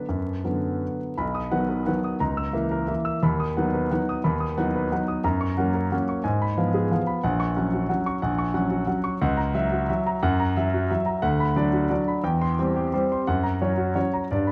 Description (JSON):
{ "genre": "classical, piano waltz", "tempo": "159-192 BPM", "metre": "3/4", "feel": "rubato", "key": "B major", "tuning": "A4 = 441 Hz", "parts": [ { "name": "clear grand piano", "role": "solo", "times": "0.0-14.5 s", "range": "A#1 to E6", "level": "-25 LUFS", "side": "equal", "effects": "none" } ], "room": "moderate recital hall reverb, RT60 1.7 s", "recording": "dark, warm production, vinyl crackle", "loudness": "-25 LUFS", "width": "mono", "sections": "0.0-1.2 A section; 1.2-14.5 B section", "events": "none", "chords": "0.0 Bm; 1.2 B; 2.2 A#dim/C#; 3.2 B/D#; 5.3 F#; 6.3 Fdim/Ab; 7.2 F#/A#; 9.2 F#7/C#; 11.2 Bm/D; 12.2 C/E; 13.3 F#" }